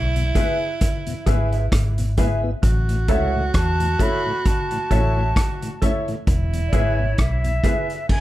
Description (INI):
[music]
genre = roots reggae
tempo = 66 BPM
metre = 4/4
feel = swing 56% on 16ths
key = A major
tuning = A4 = 440 Hz
[part]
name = raspy tenor saxophone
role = second line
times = 0.0-7.6 s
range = E4 to F#4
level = -28 LUFS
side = right 4 dB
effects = tape echo
[part]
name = vintage muted fingered electric bass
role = bass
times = 0.0-7.6 s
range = E1 to E2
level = -21 LUFS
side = equal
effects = none
[part]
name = mellow tonewheel organ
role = accompaniment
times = 0.2-7.7 s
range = E2 to E4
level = -30 LUFS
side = left 2 dB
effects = slow rotary speaker
[part]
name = vintage drum kit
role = drums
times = 0.2-8.2 s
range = crash cymbal, hi-hat, kick drum, rim click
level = -22 LUFS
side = equal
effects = none
[part]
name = mellow electric guitar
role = accompaniment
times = 0.4-7.9 s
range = G#4 to E5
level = -30 LUFS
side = right 3 dB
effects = phaser, tape echo
[part]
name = clear baby grand piano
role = stabs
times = 0.4-7.9 s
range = E4 to E5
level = -27 LUFS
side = left 2 dB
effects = none
[part]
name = mellow silver concert flute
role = melody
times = 3.1-8.2 s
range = C#5 to B5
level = -27 LUFS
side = equal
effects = tape echo
[sound]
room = light reverb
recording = none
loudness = -18 LUFS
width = side -15 dB against mid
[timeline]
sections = 0.0-8.2 A section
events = none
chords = 0.0 E; 2.6 A; 6.3 E